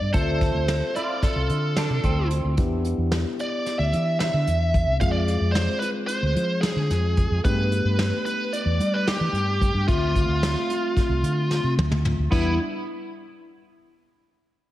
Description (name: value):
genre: progressive instrumental, band music in an uneven meter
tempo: 222 BPM (eighths)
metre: 9/8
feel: straight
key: E phrygian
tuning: A4 = 442 Hz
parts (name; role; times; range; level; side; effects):
- bluesy overdriven lead guitar; melody; 0.0-12.6 s; E4 to F5; -27 LUFS; right 1 dB; distortion, diffuse ambient delay
- clean electric guitar; second line; 0.0-2.5, 12.3-12.6 s; B3 to B4; -32 LUFS; right 2 dB; lush chorus, diffuse ambient delay
- tine electric piano; accompaniment; 0.0-12.6 s; G3 to E5; -30 LUFS; left 3 dB; wide subtle chorus
- fretless electric bass; bass; 0.0-12.6 s; C2 to G3; -24 LUFS; equal; none
- vintage brush drum kit; drums; 0.1-12.4 s; crash cymbal, hi-hat, kick drum, snare drum, toms; -26 LUFS; equal; none
room: moderate lush hall reverb, RT60 2.2 s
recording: dreamy mix soaked in reverb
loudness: -21 LUFS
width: side -14 dB against mid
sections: 0.0-12.3 A section; 12.3-14.7 B section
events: drum fill 11.5-12.3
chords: 0.1 Dm7; 2.6 Em7; 5.0 Fm; 7.4 Gadd9; 9.9 Dm7; 12.3 Em7